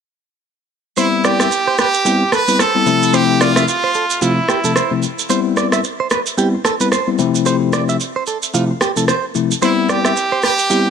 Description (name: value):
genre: afrobeats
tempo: 111 BPM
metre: 4/4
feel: swing 58% on 16ths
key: C major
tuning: A4 = 440 Hz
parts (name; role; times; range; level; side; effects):
- brilliant trumpet; melody; 1.0-5.0, 9.6-10.9 s; E4 to B4; -17 LUFS; right 2 dB; ping-pong delay
- bell-like tine electric piano; accompaniment; 1.0-10.9 s; C3 to E4; -17 LUFS; moving between left 9 dB and equal; auto-pan
- direct-recorded clean electric guitar; riff; 1.0-10.8 s; F4 to E5; -22 LUFS; right 7 dB; warbly pitch drift, ping-pong delay
- electronic shaker and rim click; drums; 1.0-10.8 s; none; -19 LUFS; right 2 dB; none
room: light reverb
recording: none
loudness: -13 LUFS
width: side -7 dB against mid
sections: 1.0-10.9 A section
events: none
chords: 1.0 Cmaj7; 2.9 Fmaj7/C; 5.3 Cmaj7; 7.2 Fmaj7/C; 9.6 Cmaj7